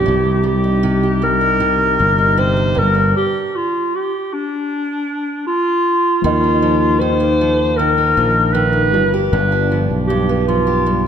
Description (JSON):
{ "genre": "acoustic pop", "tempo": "78 BPM", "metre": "4/4", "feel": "straight", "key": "Eb major", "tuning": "A4 = 435 Hz", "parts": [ { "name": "mellow clarinet", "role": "melody", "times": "0.0-11.1 s", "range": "D4 to C5", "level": "-16 LUFS", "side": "equal", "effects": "none" }, { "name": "picked steel-string acoustic guitar", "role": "accompaniment", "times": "0.0-11.1 s", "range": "G2 to G4", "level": "-20 LUFS", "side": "right 2 dB", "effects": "none" }, { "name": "sustaining fretless electric bass", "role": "bass", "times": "0.0-11.1 s", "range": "G1 to Eb2", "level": "-18 LUFS", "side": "left 1 dB", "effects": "none" }, { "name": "felt-muted upright piano", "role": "accompaniment", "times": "6.2-11.1 s", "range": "F3 to Eb5", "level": "-28 LUFS", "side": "left 4 dB", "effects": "none" } ], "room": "wet scoring stage reverb, RT60 1.5 s", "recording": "dark, warm production", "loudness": "-13 LUFS", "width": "side -8 dB against mid", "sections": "0.0-6.2 A section; 6.2-11.1 B section", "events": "stop 3.2-6.2", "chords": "0.1 Cm; 2.8 G5; 4.7 N.C.; 6.2 Ebsus2; 8.9 G7", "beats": "| 0.07 0.84 1.61 2.39 | 3.16 3.93 4.70 5.47 | 6.24 7.01 7.78 8.55 | 9.32 10.09 10.86" }